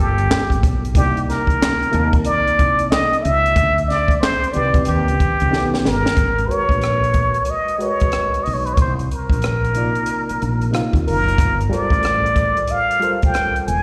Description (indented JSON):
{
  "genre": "R&B, neo-soul",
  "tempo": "92 BPM",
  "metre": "4/4",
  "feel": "swing 63% on 16ths",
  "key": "unclear",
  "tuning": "A4 = 440 Hz",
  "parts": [
    { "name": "trumpet with plunger mute", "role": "melody", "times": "0.0-13.8 s", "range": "G4 to G#5", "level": "-21 LUFS", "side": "equal", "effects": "slapback echo, tape echo" },
    { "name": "barky reed electric piano", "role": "accompaniment", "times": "0.0-13.8 s", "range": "C3 to A5", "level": "-27 LUFS", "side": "equal", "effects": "overdrive, fast tremolo, slapback echo" },
    { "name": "woody fretless electric bass", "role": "bass", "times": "0.0-13.8 s", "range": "E1 to Eb2", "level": "-23 LUFS", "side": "equal", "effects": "none" },
    { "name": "compact cocktail drum kit", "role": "drums", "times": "0.2-13.8 s", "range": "handclaps, hi-hat, kick drum, rim click, snare drum", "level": "-21 LUFS", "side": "equal", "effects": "none" }
  ],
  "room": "light reverb",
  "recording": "live gig heard through the venue's PA, recital hall reverb",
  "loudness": "-18 LUFS",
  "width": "mono",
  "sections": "0.0-6.2 A section; 6.2-13.8 B section",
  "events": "drum fill 5.5-6.2",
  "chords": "0.0 Gm9; 0.9 Cm9; 3.6 Cmaj9; 4.9 D#7b13; 6.2 G#m11; 8.8 Cm11; 11.4 Gm11"
}